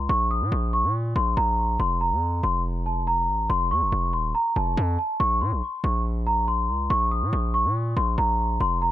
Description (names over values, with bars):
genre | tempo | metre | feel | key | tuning
hip hop, drill | 141 BPM | 4/4 | half-time | Bb harmonic minor | A4 = 436 Hz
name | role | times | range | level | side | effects
large celesta | melody | 0.0-8.9 s | A5 to Eb6 | -24 LUFS | equal | low-pass filter, tape echo
distorted 808-style bass | bass | 0.0-8.9 s | Eb1 to Bb2 | -25 LUFS | equal | distortion
room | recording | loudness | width
studio ambience | none | -21 LUFS | side -13 dB against mid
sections
0.0-8.9 A section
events
none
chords
0.0 N.C.; 1.8 F; 5.2 Bbsus2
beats
| 0.09 0.52 0.94 1.37 | 1.79 2.22 2.65 3.07 | 3.50 3.92 4.35 4.77 | 5.20 5.62 6.05 6.48 | 6.90 7.33 7.75 8.18 | 8.60